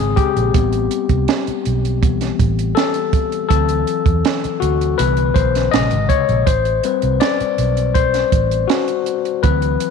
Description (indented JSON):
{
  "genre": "lush 1970s-style soul",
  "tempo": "81 BPM",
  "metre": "4/4",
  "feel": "straight",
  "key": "A dorian",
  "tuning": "A4 = 439 Hz",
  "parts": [
    { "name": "overdriven tine electric piano", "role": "accompaniment", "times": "0.0-9.9 s", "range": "C3 to D#5", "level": "-18 LUFS", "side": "left 11 dB", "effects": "none" },
    { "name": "vintage muted fingered electric bass", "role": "bass", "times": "0.0-9.8 s", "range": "Ab1 to E2", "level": "-19 LUFS", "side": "right 2 dB", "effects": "transformer saturation" },
    { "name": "compact cocktail drum kit", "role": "drums", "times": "0.2-9.9 s", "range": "hi-hat, kick drum, snare drum", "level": "-19 LUFS", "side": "right 6 dB", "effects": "none" }
  ],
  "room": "light reverb, small room ambience",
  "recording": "1960s-style stereo with parts hard left and right",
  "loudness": "-14 LUFS",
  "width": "side -6 dB against mid",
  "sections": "0.0-9.9 A section",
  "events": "tine electric piano solo 0.0-9.9",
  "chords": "0.0 Bbm7; 0.5 Am7; 3.5 D7; 5.0 Cmaj7; 5.7 Bbm7; 6.5 Am7"
}